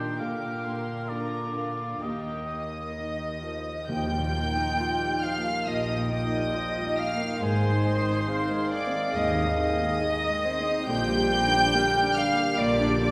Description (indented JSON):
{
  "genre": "cinematic",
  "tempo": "69 BPM",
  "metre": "4/4",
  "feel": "rubato",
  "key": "Eb major",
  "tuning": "A4 = 440 Hz",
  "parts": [
    { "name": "warm studio violin section", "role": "melody", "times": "0.0-13.1 s", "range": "F5 to G6", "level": "-35 LUFS", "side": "equal", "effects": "none" },
    { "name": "clear oboe", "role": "second line", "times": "0.0-3.0 s", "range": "D5 to G5", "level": "-37 LUFS", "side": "equal", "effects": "none" },
    { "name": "warm studio violin section", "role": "second line", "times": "0.0-13.1 s", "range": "F4 to G5", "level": "-36 LUFS", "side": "equal", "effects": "none" },
    { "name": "rich studio viola section", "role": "accompaniment", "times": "0.0-13.1 s", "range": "D3 to Ab4", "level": "-37 LUFS", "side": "equal", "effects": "none" },
    { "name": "warm baby grand piano", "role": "accompaniment", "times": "0.0-13.1 s", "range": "Eb2 to Bb4", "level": "-35 LUFS", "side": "equal", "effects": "none" },
    { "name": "warm studio cello section", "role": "bass", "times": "0.0-13.1 s", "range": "Eb2 to Bb2", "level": "-37 LUFS", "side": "equal", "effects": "none" },
    { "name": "bright silver concert flute", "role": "second line", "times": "2.5-13.1 s", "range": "C5 to G5", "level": "-33 LUFS", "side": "equal", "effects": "none" },
    { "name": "warm French horn section", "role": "sustained chords", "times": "3.9-13.1 s", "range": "D3 to Eb4", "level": "-36 LUFS", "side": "equal", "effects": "none" },
    { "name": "dark studio double bass section", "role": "bass", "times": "3.9-13.1 s", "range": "Ab1 to Eb2", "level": "-36 LUFS", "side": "equal", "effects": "none" },
    { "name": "timpani", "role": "percussion", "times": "3.9-5.2 s", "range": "Eb3", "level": "-40 LUFS", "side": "equal", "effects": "none" },
    { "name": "warm clarinet", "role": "second line", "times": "5.7-13.1 s", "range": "Bb4 to Ab5", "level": "-37 LUFS", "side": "equal", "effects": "none" }
  ],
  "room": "wet scoring stage reverb, RT60 1.4 s",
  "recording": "none",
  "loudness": "-27 LUFS",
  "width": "mono",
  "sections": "0.0-3.9 A section; 3.9-13.1 A section",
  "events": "none",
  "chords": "0.2 Bb6; 2.0 Eb; 3.9 Ebadd9; 7.4 Ab; 10.9 Gm/Bb"
}